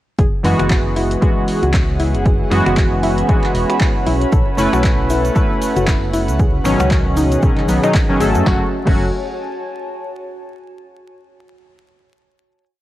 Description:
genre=deep house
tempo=116 BPM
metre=4/4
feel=swing 57% on 16ths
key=F# minor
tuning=A4 = 439 Hz
part: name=airy breathy pad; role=sustained chords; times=0.9-8.7 s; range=C#4 to F#5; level=-26 LUFS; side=right 1 dB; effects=chorus, sidechain pumping
part: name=soft round pluck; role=arpeggios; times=0.2-9.1 s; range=D#4 to D#5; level=-24 LUFS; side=left 2 dB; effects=chorus, sidechain pumping, analog delay
part: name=organ-like FM bass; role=bass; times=0.2-9.1 s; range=E1 to F#2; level=-20 LUFS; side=equal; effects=sidechain pumping
part: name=electronic kick drum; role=drums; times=0.2-9.0 s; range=none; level=-17 LUFS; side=equal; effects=vintage 12-bit sampler grit
part: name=punchy analog drum machine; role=drums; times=0.2-9.0 s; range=crash cymbal, finger snaps, handclaps, hi-hat, snare drum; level=-27 LUFS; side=equal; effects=vintage 12-bit sampler grit
part: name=warbly tape-like pad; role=texture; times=1.0-10.5 s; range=B3 to B5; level=-26 LUFS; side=right 1 dB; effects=chorus, built-in reverb, phaser, sidechain pumping
part: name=warm analog keys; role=stabs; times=0.4-9.1 s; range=B2 to B4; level=-18 LUFS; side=equal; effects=chorus, vintage 12-bit sampler grit, sidechain pumping, analog delay
part: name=egg shaker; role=percussion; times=4.3-8.4 s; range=none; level=-36 LUFS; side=right 3 dB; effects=none
room=little or no reverb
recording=vinyl crackle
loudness=-13 LUFS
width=side -14 dB against mid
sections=0.2-8.5 drop; 8.5-10.5 final chord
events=drop 0.2-8.5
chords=0.2 F#9sus4; 4.1 B9sus4; 6.4 C#9sus4; 8.5 F#m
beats=| 0.19 0.70 1.22 1.74 | 2.25 2.77 3.29 3.81 | 4.32 4.84 5.36 5.88 | 6.39 6.91 7.43 7.95 | 8.46 8.98 9.50 10.01

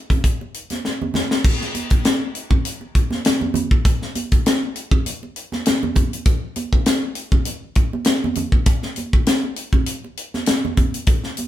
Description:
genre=soul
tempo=100 BPM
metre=4/4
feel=swing 54% on 16ths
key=none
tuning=none
part: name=tight funk drum kit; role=drums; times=0.1-11.5 s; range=crash cymbal, hi-hat, kick drum, snare drum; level=-18 LUFS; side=equal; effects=none
part: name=congas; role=percussion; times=0.1-11.5 s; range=none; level=-26 LUFS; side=right 4 dB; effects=none
room=moderate studio reverb, RT60 0.8 s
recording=band playing live in one room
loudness=-18 LUFS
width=side -13 dB against mid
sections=0.0-1.4 A section; 1.4-11.5 B section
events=drum fill 0.8-1.4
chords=none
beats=0.25 0.85 | 1.45 2.05 2.65 3.25 | 3.85 4.45 5.05 5.66 | 6.26 6.86 7.46 8.06 | 8.66 9.27 9.87 10.47 | 11.07

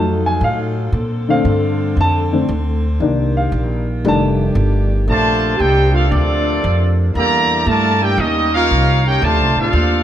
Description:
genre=jazz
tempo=116 BPM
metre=4/4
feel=swing 68% on 8ths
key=Bb major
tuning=A4 = 443 Hz
part: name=warm baby grand piano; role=accompaniment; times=0.0-4.9 s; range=D3 to A5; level=-17 LUFS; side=left 2 dB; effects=none
part: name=mellow saxophone section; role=sustained chords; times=0.0-10.0 s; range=Bb2 to A4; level=-26 LUFS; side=left 1 dB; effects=none
part: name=upright bass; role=bass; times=0.0-10.0 s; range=F1 to Bb2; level=-17 LUFS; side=equal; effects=none
part: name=brilliant trumpet section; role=melody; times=5.1-10.0 s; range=C4 to Bb5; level=-17 LUFS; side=equal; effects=none
part: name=warm trombone section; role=second line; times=5.1-10.0 s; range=C3 to G4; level=-19 LUFS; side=right 2 dB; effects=none
room=moderate large studio reverb, RT60 1.4 s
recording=none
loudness=-13 LUFS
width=side -10 dB against mid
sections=0.0-5.1 A section; 5.1-10.0 B section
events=grand piano solo 0.0-5.1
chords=0.0 F7b9; 0.9 Bbmaj9; 3.0 Cm7; 4.0 F13; 5.1 Bbmaj9; 7.2 Em7b5; 8.2 Eb7; 9.2 Dm7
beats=0.42 | 0.94 1.46 1.98 2.49 | 3.01 3.53 4.05 4.57 | 5.08 5.60 6.12 6.64 | 7.16 7.67 8.19 8.71 | 9.22 9.74

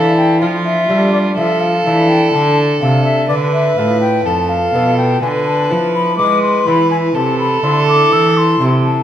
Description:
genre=classical, baroque-style sonata movement with continuo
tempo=62 BPM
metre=4/4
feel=rubato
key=D minor, A minor from 3.3 s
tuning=A4 = 440 Hz
part: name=bright baroque flute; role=melody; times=0.0-9.0 s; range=D5 to E6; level=-17 LUFS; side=left 4 dB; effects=none
part: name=rich violin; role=second line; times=0.0-9.0 s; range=F4 to B4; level=-17 LUFS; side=right 2 dB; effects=none
part: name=lute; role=accompaniment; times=0.0-9.0 s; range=F2 to C5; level=-21 LUFS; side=left 1 dB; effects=none
part: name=rich cello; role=bass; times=0.0-9.0 s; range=F2 to G#3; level=-16 LUFS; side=right 1 dB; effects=none
room=wet recital hall reverb, RT60 1.6 s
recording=none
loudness=-11 LUFS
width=side -10 dB against mid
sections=0.0-9.0 A section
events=none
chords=0.0 Dm; 3.3 Bm7b5; 5.2 E7/D; 7.2 Am/C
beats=0.41 1.38 2.34 | 3.29 4.26 5.23 6.19 | 7.15 8.12

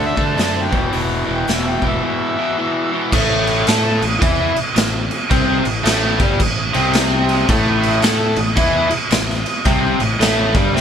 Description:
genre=blues rock power trio and southern rock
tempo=110 BPM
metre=4/4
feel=swing 63% on 8ths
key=unclear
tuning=A4 = 440 Hz
part: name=mellow harmonica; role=melody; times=0.0-3.1 s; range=E5 to A5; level=-24 LUFS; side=equal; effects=overdrive
part: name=overdriven electric guitar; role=riff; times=0.0-10.8 s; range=E2 to A4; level=-18 LUFS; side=left 1 dB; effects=none
part: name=fuzz fingered electric bass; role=bass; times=0.0-10.8 s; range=E1 to D3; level=-21 LUFS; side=equal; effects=overdrive
part: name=raw garage drum kit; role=drums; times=0.2-10.8 s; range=crash cymbal, hi-hat, kick drum, snare drum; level=-18 LUFS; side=equal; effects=none
room=light reverb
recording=band playing live in one room, lossy compression artefacts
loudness=-14 LUFS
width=side -8 dB against mid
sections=0.0-3.1 A section; 3.1-10.8 B section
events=none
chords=0.0 D; 0.7 E5; 3.1 A5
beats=0.39 | 0.94 1.49 2.04 2.58 | 3.13 3.68 4.22 4.77 | 5.31 5.86 6.40 6.95 | 7.49 8.04 8.58 9.12 | 9.67 10.21 10.75

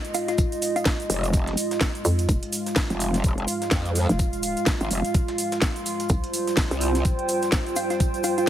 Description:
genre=bass house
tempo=126 BPM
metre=4/4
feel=swing 58% on 16ths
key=F minor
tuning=A4 = 438 Hz
part: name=dark analog pad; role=sustained chords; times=0.0-8.5 s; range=G3 to F5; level=-30 LUFS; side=left 1 dB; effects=wide subtle chorus, sidechain pumping
part: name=garage drum kit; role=drums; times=0.0-8.5 s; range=hi-hat, snare drum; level=-28 LUFS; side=equal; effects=studio reverb
part: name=tube shaker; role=percussion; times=0.0-8.5 s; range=none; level=-35 LUFS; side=right 3 dB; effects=none
part: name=warbly tape-like pad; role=texture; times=0.0-8.5 s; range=F4 to G5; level=-31 LUFS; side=right 4 dB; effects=chorus, built-in reverb, sidechain pumping
part: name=thumb-piano-like synth pluck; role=melody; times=0.1-1.4, 7.8-8.4 s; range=F4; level=-28 LUFS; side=equal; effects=chorus, phaser, tape echo
part: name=breakbeat sampler-style drum kit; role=drums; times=0.1-8.4 s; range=hi-hat, snare drum, tambourine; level=-39 LUFS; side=left 1 dB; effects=high-pass filter on snare, studio reverb, high-pass filter on perc, high-pass filter on hats
part: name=electronic kick drum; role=drums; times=0.4-8.1 s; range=none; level=-23 LUFS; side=equal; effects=studio reverb
part: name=growl bass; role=bass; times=1.1-7.0 s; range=F1 to F2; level=-24 LUFS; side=equal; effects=chorus, sidechain pumping
part: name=hollow knocking FM bass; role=bass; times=2.0-6.2 s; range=F1 to F2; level=-24 LUFS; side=equal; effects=tube saturation, sidechain pumping
room=light reverb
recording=heavily compressed radio sound, multiband compression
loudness=-21 LUFS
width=side -11 dB against mid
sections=0.0-8.5 A section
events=none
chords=0.0 Fm7; 6.1 Csus4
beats=| 0.38 0.86 1.33 1.81 | 2.29 2.76 3.24 3.72 | 4.19 4.67 5.14 5.62 | 6.10 6.57 7.05 7.53 | 8.00 8.48

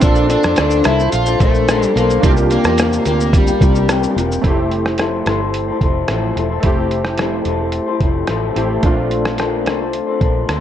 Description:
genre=indie pop, bedroom pop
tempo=109 BPM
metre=4/4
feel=straight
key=F major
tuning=A4 = 442 Hz
part: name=overdriven slide guitar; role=melody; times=0.0-4.1 s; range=G3 to F4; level=-18 LUFS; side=left 1 dB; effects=lush chorus, tape echo
part: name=electric guitar through a small old amp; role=accompaniment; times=0.0-10.6 s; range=C3 to C5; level=-19 LUFS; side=left 5 dB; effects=lush chorus, warbly pitch drift
part: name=warm analog keys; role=accompaniment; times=0.0-10.6 s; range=A3 to A4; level=-22 LUFS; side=right 4 dB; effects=chorus, cassette tape
part: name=vintage muted fingered electric bass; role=bass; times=0.0-10.6 s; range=E1 to F2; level=-21 LUFS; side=right 1 dB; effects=none
part: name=lo-fi sampler-style drum kit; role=drums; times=0.0-10.6 s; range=hi-hat, kick drum, rim click, shaker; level=-18 LUFS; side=right 1 dB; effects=vintage 12-bit sampler grit
room=light reverb, digital ambience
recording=none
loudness=-13 LUFS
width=side -10 dB against mid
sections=0.0-4.4 A section; 4.4-10.6 B section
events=none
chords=0.0 Bbmaj9; 2.2 C7sus4; 4.4 Fmaj7; 8.8 Bbmaj9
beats=| 0.03 0.58 1.13 1.68 | 2.23 2.78 3.33 3.88 | 4.44 4.99 5.54 6.09 | 6.64 7.19 7.74 8.29 | 8.84 9.39 9.94 10.49

